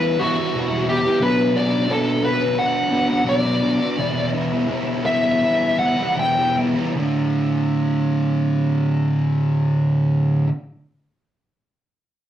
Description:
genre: rock.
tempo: 76-89 BPM.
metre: 4/4.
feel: straight.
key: D major.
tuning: A4 = 438 Hz.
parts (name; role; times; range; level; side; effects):
bluesy overdriven lead guitar; melody; 0.0-6.5 s; F#4 to G5; -20 LUFS; left 1 dB; distortion.
fuzz guitar; riff; 0.0-10.5 s; D2 to B4; -19 LUFS; equal; distortion.
room: moderate studio reverb, RT60 0.7 s.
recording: rough rehearsal-room recording.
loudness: -17 LUFS.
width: side -11 dB against mid.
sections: 0.0-7.0 A section; 7.0-10.1 B section.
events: lead electric guitar solo 0.0-7.0; slowing down 1.2-7.0.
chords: 0.0 Em; 1.2 Bm; 4.0 Em; 7.0 D5.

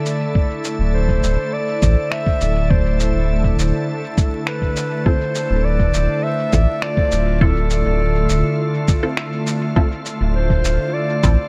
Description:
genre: ambient dub.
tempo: 102 BPM.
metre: 4/4.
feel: straight.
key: D minor.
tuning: A4 = 439 Hz.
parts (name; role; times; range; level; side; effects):
soft additive organ-like pad; sustained chords; 0.0-11.5 s; D3 to A4; -25 LUFS; equal; ensemble chorus, built-in reverb.
electronic cabasa and finger snaps; drums; 0.1-11.4 s; none; -30 LUFS; equal; dub echo.
electronic kick drum; drums; 0.4-11.4 s; none; -20 LUFS; equal; none.
warm sub bass; bass; 0.8-11.4 s; D1 to A1; -20 LUFS; equal; none.
clear clarinet; melody; 0.9-11.5 s; A4 to E5; -26 LUFS; equal; dub echo.
filtered dub chord stab; stabs; 5.1-11.4 s; C4 to A4; -30 LUFS; equal; none.
room: light reverb.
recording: vinyl crackle.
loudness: -18 LUFS.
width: mono.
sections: 0.0-11.5 A section.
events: none.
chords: 0.0 Dm9.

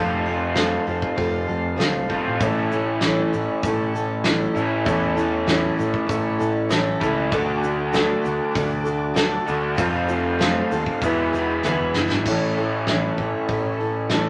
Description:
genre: folk rock and heartland rock.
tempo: 98 BPM.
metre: 4/4.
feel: straight.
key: A major.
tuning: A4 = 440 Hz.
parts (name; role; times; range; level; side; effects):
dark grand piano; accompaniment; 0.0-13.7 s; E4 to D5; -34 LUFS; equal; none.
picked steel-string acoustic guitar; accompaniment; 0.0-14.3 s; A2 to B4; -26 LUFS; equal; none.
tonewheel organ; sustained chords; 0.0-14.3 s; G#4 to D6; -36 LUFS; equal; none.
raw garage guitar; riff; 0.0-14.3 s; E2 to F#4; -28 LUFS; equal; overdrive.
picked electric bass; bass; 0.0-14.3 s; E1 to F2; -32 LUFS; equal; none.
soft brush drum kit; drums; 0.3-14.2 s; crash cymbal, hi-hat, kick drum, snare drum; -28 LUFS; equal; none.
egg shaker; percussion; 2.4-12.1 s; none; -50 LUFS; equal; none.
room: moderate studio reverb, RT60 0.6 s.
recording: none.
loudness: -22 LUFS.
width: mono.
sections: 0.0-12.3 A section; 12.3-14.3 B section.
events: drum fill 11.6-12.3.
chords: 0.0 F; 2.4 A; 7.3 D; 9.8 F; 11.0 E; 12.3 A.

